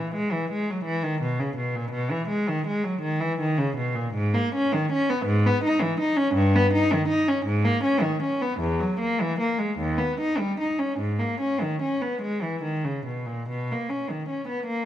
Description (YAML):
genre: classical, baroque-style suite movement for unaccompanied cello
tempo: 45-56 BPM (dotted quarters)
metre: 6/8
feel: rubato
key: G# minor from 4.2 s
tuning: A4 = 439 Hz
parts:
  - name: rich cello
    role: solo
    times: 0.0-14.8 s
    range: D#2 to D#4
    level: -23 LUFS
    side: equal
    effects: none
room: moderate scoring stage reverb, RT60 1.9 s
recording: close, detailed microphones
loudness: -23 LUFS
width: side -11 dB against mid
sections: 0.0-13.5 A section; 13.5-14.9 A section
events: none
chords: none